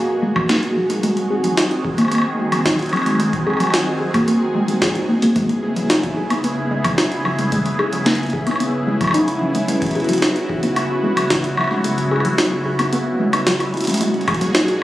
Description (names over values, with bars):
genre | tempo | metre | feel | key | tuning
IDM | 111 BPM | 4/4 | straight | unclear | A4 = 440 Hz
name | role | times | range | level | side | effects
phased analog pad | sustained chords | 0.0-14.8 s | B2 to G#4 | -21 LUFS | equal | phaser, chorus
warbly dusty pluck | arpeggios | 0.0-14.6 s | F#3 to G#4 | -20 LUFS | left 1 dB | chorus, cassette tape, tape echo
electronic kick drum | drums | 0.4-14.4 s | none | -28 LUFS | equal | overdrive
jungle sampler-style drum kit | drums | 0.4-14.8 s | hi-hat, snare drum, woodblock | -21 LUFS | equal | none
room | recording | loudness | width
wet huge ambient reverb, RT60 4.0 s | recorded on a phone in the room, club reverb, compression | -16 LUFS | side -15 dB against mid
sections
0.0-14.0 A section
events
filter sweep on synth arpeggio sound 0.0-14.0; kick drops out 11.8-14.0; drum fill 13.7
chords
0.0 G#m9; 1.0 G#7; 5.4 C#m7; 14.0 G#m9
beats
0.49 | 1.03 1.57 2.12 2.66 | 3.20 3.74 4.28 4.82 | 5.36 5.90 6.44 6.98 | 7.52 8.06 8.60 9.14 | 9.68 10.22 10.77 11.30 | 11.85 12.39 12.93 13.47 | 14.01 14.55